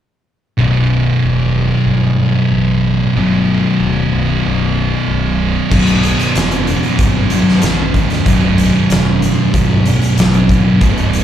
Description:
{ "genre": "stoner and doom metal", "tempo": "94 BPM", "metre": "4/4", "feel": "straight", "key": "B minor", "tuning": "A4 = 440 Hz", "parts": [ { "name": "thick fuzz guitar", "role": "riff", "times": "0.6-11.2 s", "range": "B1 to B2", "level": "-16 LUFS", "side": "left 5 dB", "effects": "distortion" }, { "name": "thick fuzz guitar", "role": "riff", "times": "0.6-11.2 s", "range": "B1 to B2", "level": "-16 LUFS", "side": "right 6 dB", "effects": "distortion" }, { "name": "fuzz fingered electric bass", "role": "bass", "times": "0.6-11.2 s", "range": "B0 to A1", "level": "-19 LUFS", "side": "equal", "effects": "overdrive" }, { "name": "string machine, cellos", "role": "sustained chords", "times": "5.7-11.2 s", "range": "D3 to B3", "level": "-27 LUFS", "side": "equal", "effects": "none" }, { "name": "oversized low-tuned drum kit", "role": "drums", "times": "5.7-11.2 s", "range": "crash cymbal, hi-hat, kick drum, snare drum", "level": "-15 LUFS", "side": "equal", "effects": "none" } ], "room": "light reverb", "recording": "live gig heard through the venue's PA, club reverb", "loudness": "-11 LUFS", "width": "side -10 dB against mid", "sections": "0.6-5.7 A section; 5.7-11.2 B section", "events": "none", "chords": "0.6 B5; 5.7 Bm" }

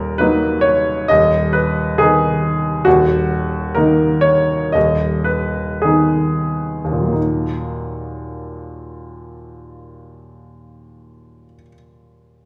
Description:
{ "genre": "classical, romantic character piece for solo piano", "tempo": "45-70 BPM", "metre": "2/4", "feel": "rubato", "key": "Eb minor", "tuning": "A4 = 440 Hz", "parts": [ { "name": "clear baby grand piano", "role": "solo", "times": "0.0-12.5 s", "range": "Eb1 to Eb5", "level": "-17 LUFS", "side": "equal", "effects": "none" } ], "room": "wet recital hall reverb, RT60 1.4 s", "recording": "heard from further back in the room", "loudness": "-16 LUFS", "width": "mono", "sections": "0.0-7.2 A section; 7.2-12.3 B section", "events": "slowing down 2.0-7.2", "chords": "0.0 Ebm; 1.1 Abm/Eb; 2.9 Ebm; 4.8 Abm/Eb; 7.2 Ebm" }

